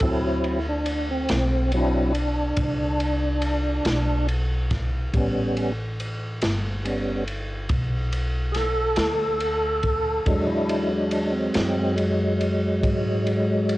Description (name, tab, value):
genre	slow blues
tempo	47 BPM (dotted quarters)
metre	12/8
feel	straight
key	unclear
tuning	A4 = 441 Hz
part	tonewheel organ	sustained chords	0.0-13.8 s	F#3 to A4	-23 LUFS	equal	slow rotary speaker, overdrive, chorus vibrato, cassette tape
part	upright bass	bass	0.0-13.8 s	G1 to G#2	-26 LUFS	equal	none
part	crunchy breakbeat drum kit	drums	0.0-13.8 s	kick drum, ride cymbal, snare drum	-28 LUFS	equal	cassette tape
room	small room ambience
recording	home recording on cassette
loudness	-21 LUFS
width	side -17 dB against mid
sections	0.0-13.8 A section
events	tonewheel organ solo 0.0-13.8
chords	0.0 D9; 5.1 A9; 10.3 E9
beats	| 0.02 1.30 2.59 3.87 | 5.15 6.43 7.71 9.00 | 10.28 11.56 12.84